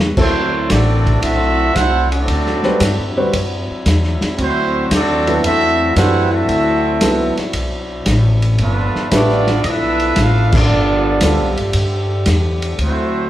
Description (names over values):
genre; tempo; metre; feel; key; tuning
jazz, big band swing; 114 BPM; 4/4; swing 69% on 8ths; D major; A4 = 440 Hz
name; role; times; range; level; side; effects
warm upright piano; accompaniment; 0.0-11.6 s; E3 to B4; -20 LUFS; equal; none
bright trombone section; sustained chords; 0.0-13.3 s; D3 to B4; -26 LUFS; left 1 dB; none
upright bass; bass; 0.0-13.3 s; G1 to G2; -18 LUFS; equal; none
mellow trumpet section; melody; 0.2-13.3 s; A3 to F#5; -18 LUFS; right 2 dB; none
warm trombone section; second line; 0.2-13.3 s; D3 to F#4; -22 LUFS; equal; none
vintage drum kit; drums; 0.2-13.0 s; crash cymbal, hi-hat, kick drum, ride cymbal, snare drum; -20 LUFS; equal; none
room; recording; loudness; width
wet large studio reverb, RT60 1.3 s; heard from further back in the room; -13 LUFS; side -13 dB against mid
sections
0.2-13.3 A section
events
drum fill 0.0; band accent 10.4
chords
0.2 D13; 8.6 G13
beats
| 0.17 0.70 1.23 1.75 | 2.28 2.81 3.33 3.86 | 4.39 4.91 5.44 5.97 | 6.49 7.02 7.54 8.07 | 8.59 9.12 9.64 10.17 | 10.70 11.22 11.75 12.27 | 12.80